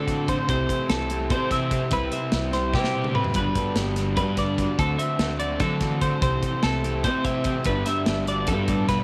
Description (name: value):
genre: math rock and midwest emo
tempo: 293 BPM (eighths)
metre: 7/8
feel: straight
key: G major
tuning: A4 = 436 Hz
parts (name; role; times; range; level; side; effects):
- twelve-string electric guitar; accompaniment; 0.0-9.0 s; G2 to C5; -31 LUFS; equal; none
- twelve-string electric guitar; arpeggios; 0.0-9.0 s; G4 to E5; -30 LUFS; equal; tape echo
- overdriven electric guitar; riff; 0.0-9.0 s; G2 to F#4; -34 LUFS; equal; none
- fuzz fingered electric bass; bass; 0.0-9.0 s; G1 to D3; -30 LUFS; equal; overdrive
- modern studio drum kit; drums; 0.1-9.0 s; hi-hat, kick drum, snare drum, toms; -31 LUFS; equal; none
room: light reverb, small room ambience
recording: none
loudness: -24 LUFS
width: mono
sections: 0.0-9.0 A section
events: drum fill 2.7-3.4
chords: 0.5 Am7/C; 1.9 Cmaj7; 3.4 Gmaj7; 4.8 D7; 6.2 Am7/C; 7.7 Gmaj7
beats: 0.07 0.28 | 0.48 0.69 0.89 1.10 1.30 1.51 1.71 | 1.92 2.12 2.33 2.54 2.74 2.94 3.15 | 3.35 3.56 3.77 3.97 4.18 4.38 4.59 | 4.79 5.00 5.20 5.41 5.61 5.82 6.02 | 6.22 6.43 6.63 6.84 7.04 7.25 7.45 | 7.66 7.86 8.07 8.27 8.48 8.68 8.89